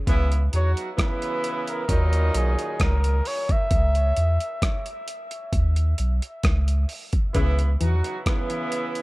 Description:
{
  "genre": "dub reggae",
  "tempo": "66 BPM",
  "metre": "4/4",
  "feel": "straight",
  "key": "C# dorian",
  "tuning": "A4 = 443 Hz",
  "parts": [
    { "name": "mellow horn section", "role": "second line", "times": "0.1-9.0 s", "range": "A#2 to F#4", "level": "-29 LUFS", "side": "right 2 dB", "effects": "dub echo" },
    { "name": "warm sub bass", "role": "bass", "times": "0.1-8.0 s", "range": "B1 to E2", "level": "-20 LUFS", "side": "equal", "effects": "none" },
    { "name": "dusty soul sampler-style drum kit", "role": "drums", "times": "0.1-9.0 s", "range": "hi-hat, kick drum, rim click", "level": "-24 LUFS", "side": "equal", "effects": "overdrive" },
    { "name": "warm flugelhorn", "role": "melody", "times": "0.6-4.9 s", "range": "G#4 to E5", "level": "-30 LUFS", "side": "equal", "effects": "dub echo" },
    { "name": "muted clav", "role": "riff", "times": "7.4-7.9 s", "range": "C#3 to E3", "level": "-34 LUFS", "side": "left 4 dB", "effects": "dub echo" }
  ],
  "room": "little or no reverb",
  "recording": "none",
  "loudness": "-21 LUFS",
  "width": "side -20 dB against mid",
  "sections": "0.0-9.0 A section",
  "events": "break 0.1-7.4",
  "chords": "0.1 C#m7; 1.9 D#m7; 3.7 C#m; 5.5 Badd9; 7.4 C#m7",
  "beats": "| 0.07 0.98 1.89 2.80 | 3.71 4.62 5.53 6.44 | 7.35 8.26"
}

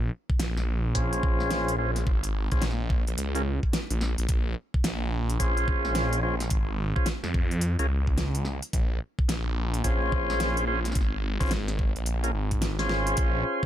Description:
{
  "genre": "glitch hop",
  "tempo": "108 BPM",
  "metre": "4/4",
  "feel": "swing 63% on 16ths",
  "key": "Bb minor",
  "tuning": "A4 = 436 Hz",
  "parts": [
    { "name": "phased detuned saw bass", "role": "bass", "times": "0.0-13.4 s", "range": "Ab1 to F2", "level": "-28 LUFS", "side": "equal", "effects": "phaser" },
    { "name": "electronic kick drum", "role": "drums", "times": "0.3-13.7 s", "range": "none", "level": "-27 LUFS", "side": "equal", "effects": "none" },
    { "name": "pop drum kit", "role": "drums", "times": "0.4-13.3 s", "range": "hi-hat, snare drum", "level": "-32 LUFS", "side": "equal", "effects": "none" },
    { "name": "tonewheel organ", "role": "stabs", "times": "0.9-13.7 s", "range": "Db4 to C5", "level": "-30 LUFS", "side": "equal", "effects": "slow rotary speaker, sidechain pumping, low-pass filter, digital delay" }
  ],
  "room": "digital ambience",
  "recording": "none",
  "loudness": "-24 LUFS",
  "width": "side -11 dB against mid",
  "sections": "0.0-13.7 A section",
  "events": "filter sweep on tonewheel organ 0.0-13.7; drum fill 12.8-13.2",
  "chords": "0.0 Bbm9",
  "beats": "0.40 0.95 1.51 | 2.06 2.62 3.18 3.73 | 4.29 4.84 5.40 5.95 | 6.51 7.06 7.62 8.18 | 8.73 9.29 9.84 10.40 | 10.95 11.51 12.06 12.62 | 13.18"
}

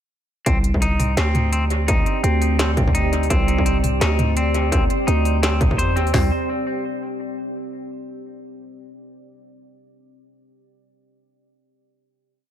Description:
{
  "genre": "half-time drum and bass",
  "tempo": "169 BPM",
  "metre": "4/4",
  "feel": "swing 58% on 16ths, half-time",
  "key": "C minor",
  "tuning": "A4 = 440 Hz",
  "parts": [
    { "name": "deep dark ambient pad", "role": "sustained chords", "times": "1.5-6.3 s", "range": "C4 to D5", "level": "-27 LUFS", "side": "equal", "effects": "chorus, built-in reverb, sidechain pumping" },
    { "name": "clean electric guitar", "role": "arpeggios", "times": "0.5-6.3 s", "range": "C4 to C5", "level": "-25 LUFS", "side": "left 2 dB", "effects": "analog delay" },
    { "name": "growling 808-style bass", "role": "bass", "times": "0.5-6.3 s", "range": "C2 to F2", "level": "-20 LUFS", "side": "equal", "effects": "none" },
    { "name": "industrial drum kit", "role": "drums", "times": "0.5-6.2 s", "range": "hi-hat, kick drum, snare drum, toms", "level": "-21 LUFS", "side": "equal", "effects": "distortion" },
    { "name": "industrial drum kit", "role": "drums", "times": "0.5-6.1 s", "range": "hi-hat, snare drum, toms", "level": "-25 LUFS", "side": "equal", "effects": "analog delay" }
  ],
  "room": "light reverb",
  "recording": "echo-heavy mix",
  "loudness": "-17 LUFS",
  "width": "side -10 dB against mid",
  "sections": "0.5-6.1 drop; 6.1-7.6 final chord",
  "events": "drop 0.5-6.1",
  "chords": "0.5 C5",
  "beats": "| 0.46 0.82 1.17 1.53 | 1.88 2.24 2.59 2.95 | 3.30 3.66 4.01 4.37 | 4.72 5.08 5.43 5.79 | 6.14"
}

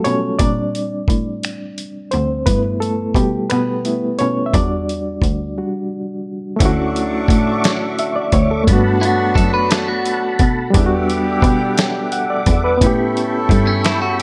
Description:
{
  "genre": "slow six-eight R&B",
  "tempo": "58 BPM (dotted quarters)",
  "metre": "6/8",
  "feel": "straight",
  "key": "D major",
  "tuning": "A4 = 440 Hz",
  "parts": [
    { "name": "barky reed electric piano", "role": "accompaniment", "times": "0.0-14.2 s", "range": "F#3 to F#5", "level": "-22 LUFS", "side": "equal", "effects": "overdrive, fast tremolo" },
    { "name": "rich cello", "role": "bass", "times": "0.0-14.2 s", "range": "D2 to B2", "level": "-23 LUFS", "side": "equal", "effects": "none" },
    { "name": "dusty soul sampler-style drum kit", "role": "drums", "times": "0.0-14.2 s", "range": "finger snaps, hi-hat, kick drum, snare drum", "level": "-20 LUFS", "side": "equal", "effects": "none" },
    { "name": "tonewheel organ", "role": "sustained chords", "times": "6.6-14.2 s", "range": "F#4 to D6", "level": "-28 LUFS", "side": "equal", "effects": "chorus vibrato, slow rotary speaker" },
    { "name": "warm horn section", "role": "stabs", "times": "6.6-14.2 s", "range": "D3 to A4", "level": "-26 LUFS", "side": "equal", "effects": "slapback echo" },
    { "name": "clean electric guitar", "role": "second line", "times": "9.0-14.2 s", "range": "C#4 to B4", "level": "-23 LUFS", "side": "equal", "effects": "none" }
  ],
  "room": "light reverb",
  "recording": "none",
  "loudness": "-17 LUFS",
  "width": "mono",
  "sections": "0.0-6.6 A section; 6.6-14.2 B section",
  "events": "reed electric piano solo 0.0-6.6; break 5.6-6.6",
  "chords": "0.4 Bb69; 2.5 G69; 4.5 Em7; 6.6 Dmaj9; 8.7 Gmaj9; 10.7 Em9; 12.8 A9",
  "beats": "| 0.40 1.43 | 2.47 3.50 | 4.54 5.57 | 6.60 7.64 | 8.67 9.71 | 10.74 11.78 | 12.81 13.85"
}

